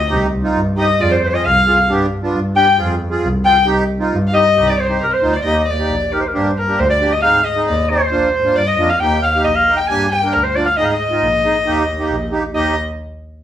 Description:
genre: klezmer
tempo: 135 BPM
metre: 2/4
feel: straight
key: C harmonic minor, Eb major from 5.5 s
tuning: A4 = 440 Hz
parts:
  - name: warm clarinet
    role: melody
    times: 0.0-12.8 s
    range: Bb4 to Ab5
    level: -15 LUFS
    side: left 2 dB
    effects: none
  - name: rich violin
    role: second line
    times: 0.0-12.8 s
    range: Bb4 to Ab5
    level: -22 LUFS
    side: equal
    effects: none
  - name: accordion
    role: accompaniment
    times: 0.1-12.8 s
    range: Bb3 to Bb4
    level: -20 LUFS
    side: right 2 dB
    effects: light tremolo tuning
  - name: warm double bass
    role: bass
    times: 0.1-12.8 s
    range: Bb1 to Ab2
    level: -20 LUFS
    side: equal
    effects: none
room: wet studio reverb, RT60 0.6 s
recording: heard from further back in the room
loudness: -13 LUFS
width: side -11 dB against mid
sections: 0.0-5.5 A section; 5.5-12.6 B section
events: none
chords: 0.1 Cm; 1.0 Fm; 1.9 G; 2.8 Fm; 3.7 Cm; 5.5 Eb; 6.3 Gm; 7.2 Ab; 8.1 Bb; 9.0 Eb; 9.9 Gm; 10.8 Ab; 11.7 Eb

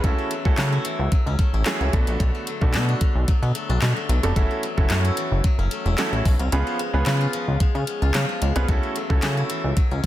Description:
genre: dance-pop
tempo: 111 BPM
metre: 4/4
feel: straight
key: F# minor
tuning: A4 = 440 Hz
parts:
  - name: clear baby grand piano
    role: accompaniment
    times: 0.0-9.8 s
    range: A3 to B4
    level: -27 LUFS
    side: right 3 dB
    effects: sidechain pumping
  - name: steel-string zither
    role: arpeggios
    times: 0.0-10.1 s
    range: D3 to E#4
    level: -30 LUFS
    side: left 4 dB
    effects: sidechain pumping, ping-pong delay
  - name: chorused synth bass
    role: bass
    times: 0.0-10.0 s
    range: E1 to C#3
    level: -22 LUFS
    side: equal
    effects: sidechain pumping
  - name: smooth R&B drum kit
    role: drums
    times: 0.0-10.1 s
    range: handclaps, hi-hat, kick drum, snare drum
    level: -22 LUFS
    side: equal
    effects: none
room: light reverb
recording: dense, heavily limited modern master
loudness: -19 LUFS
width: side -14 dB against mid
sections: 0.0-10.1 A section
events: kick muted 6.5-7.6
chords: 0.0 F#m7/C#; 1.9 Bm7; 4.4 F#m7; 6.5 C#7; 8.7 F#m7/C#

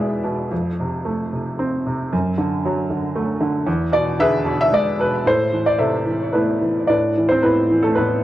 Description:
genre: classical, lyrical solo piano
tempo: 113 BPM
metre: 3/4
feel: uneven beats, rubato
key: A minor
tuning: A4 = 440 Hz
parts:
  - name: clear baby grand piano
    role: solo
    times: 0.0-8.2 s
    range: E2 to E5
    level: -17 LUFS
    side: equal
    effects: cassette tape, analog delay
room: wet studio reverb, RT60 0.5 s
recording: home recording on cassette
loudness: -17 LUFS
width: side -14 dB against mid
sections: 0.0-6.9 A section; 6.9-8.2 B section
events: none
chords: 0.0 E; 0.5 F; 2.1 D/F#; 3.7 E7; 5.3 Am

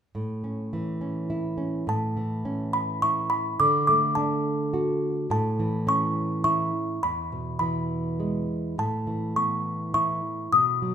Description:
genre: children's music, lullaby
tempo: 104 BPM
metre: 3/4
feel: rubato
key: A major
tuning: A4 = 440 Hz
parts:
  - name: nylon-string guitar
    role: accompaniment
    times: 0.1-10.9 s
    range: E2 to F#4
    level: -27 LUFS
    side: right 1 dB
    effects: none
  - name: music box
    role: melody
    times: 1.9-10.9 s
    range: A5 to D#6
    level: -25 LUFS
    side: left 1 dB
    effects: none
room: moderate recital hall reverb, RT60 1.5 s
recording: minimal, uncompressed stereo recording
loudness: -24 LUFS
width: side -8 dB against mid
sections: 0.1-1.9 A section; 1.9-10.9 B section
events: none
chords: 0.1 A; 3.6 D; 5.3 A; 7.0 E; 8.8 Asus2

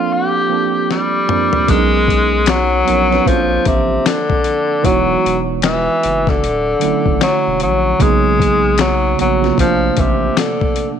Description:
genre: R&B, neo-soul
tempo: 76 BPM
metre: 4/4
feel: swing 61% on 16ths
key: unclear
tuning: A4 = 440 Hz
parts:
  - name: breathy tenor saxophone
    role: melody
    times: 0.0-10.9 s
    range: C3 to G4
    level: -15 LUFS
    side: left 2 dB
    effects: slapback echo
  - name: mellow tine electric piano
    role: accompaniment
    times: 0.0-11.0 s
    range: C3 to B4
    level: -19 LUFS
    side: right 13 dB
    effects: none
  - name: dusty soul sampler-style drum kit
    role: drums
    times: 0.9-11.0 s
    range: finger snaps, hi-hat, kick drum, snare drum, toms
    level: -19 LUFS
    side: left 4 dB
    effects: none
  - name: saturated sub bass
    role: bass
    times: 1.7-10.3 s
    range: D1 to B1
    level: -20 LUFS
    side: equal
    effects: none
room: light reverb, digital ambience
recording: 1960s-style stereo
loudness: -12 LUFS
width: side -8 dB against mid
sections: 0.0-1.7 A section; 1.7-11.0 B section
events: break 0.0-1.7; drum fill 0.9-1.7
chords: 0.0 Bbmaj9; 1.7 Bmaj9; 3.3 Bbmaj9; 4.8 Emaj9; 6.4 Dmaj9; 8.0 Bmaj9; 9.6 Bbmaj9

